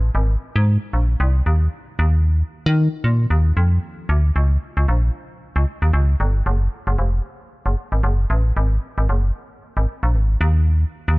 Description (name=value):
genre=funk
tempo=114 BPM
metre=4/4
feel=swing 56% on 16ths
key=unclear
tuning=A4 = 440 Hz
part: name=metallic FM bass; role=solo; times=0.0-11.2 s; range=F1 to Eb3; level=-17 LUFS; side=equal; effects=none
room=little or no reverb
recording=faint mains hum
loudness=-17 LUFS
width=side -24 dB against mid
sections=0.0-4.4 A section; 4.4-11.2 B section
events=none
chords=none